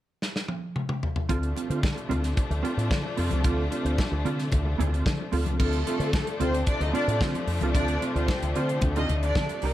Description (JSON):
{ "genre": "disco", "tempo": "112 BPM", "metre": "4/4", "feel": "straight", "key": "unclear", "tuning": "A4 = 437 Hz", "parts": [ { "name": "modern studio drum kit", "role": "drums", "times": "0.2-9.7 s", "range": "crash cymbal, hi-hat, kick drum, snare drum, toms", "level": "-29 LUFS", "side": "equal", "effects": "none" }, { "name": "mellow electric guitar", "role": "accompaniment", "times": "1.3-9.7 s", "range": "C4 to C5", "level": "-31 LUFS", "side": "right 4 dB", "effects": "ensemble chorus" }, { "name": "clear studio string section", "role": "sustained chords", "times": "1.3-9.7 s", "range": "C3 to Eb4", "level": "-33 LUFS", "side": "left 2 dB", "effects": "none" }, { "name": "fingered electric bass with an envelope filter", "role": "bass", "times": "1.3-9.7 s", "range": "C2 to D3", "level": "-27 LUFS", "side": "equal", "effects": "none" }, { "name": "congas", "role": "percussion", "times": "1.3-9.6 s", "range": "none", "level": "-37 LUFS", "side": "left 4 dB", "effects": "none" }, { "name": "warm symphonic violin section", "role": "second line", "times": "5.6-9.6 s", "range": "A3 to Eb5", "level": "-30 LUFS", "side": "left 1 dB", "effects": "none" } ], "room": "light reverb, small room ambience", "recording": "none", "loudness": "-24 LUFS", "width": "side -14 dB against mid", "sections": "0.0-1.3 A section; 1.3-5.6 B section; 5.6-9.7 C section", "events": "drum fill 0.2-1.3", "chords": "0.0 N.C.; 1.3 Dm7", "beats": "0.22 0.76 | 1.30 1.84 2.37 2.91 | 3.45 3.99 4.52 5.06 | 5.60 6.13 6.67 7.21 | 7.75 8.28 8.82 9.36" }